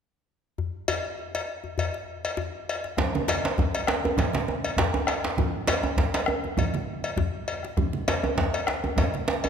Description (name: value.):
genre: west african traditional, West African drum ensemble.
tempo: 100 BPM.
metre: 4/4.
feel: swing 54% on 16ths.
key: none.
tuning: none.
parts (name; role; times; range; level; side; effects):
djembe; percussion; 0.6-9.3 s; none; -32 LUFS; left 5 dB; none.
cowbell; percussion; 0.9-9.5 s; none; -31 LUFS; left 4 dB; none.
bombo; percussion; 3.0-9.1 s; none; -30 LUFS; equal; none.
congas; percussion; 3.0-9.5 s; none; -33 LUFS; right 6 dB; none.
djembe; percussion; 3.0-9.5 s; none; -26 LUFS; right 3 dB; none.
room: wet scoring stage reverb, RT60 1.8 s.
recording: none.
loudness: -24 LUFS.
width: side -7 dB against mid.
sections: 0.6-3.0 A section; 3.0-9.5 B section.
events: none.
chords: none.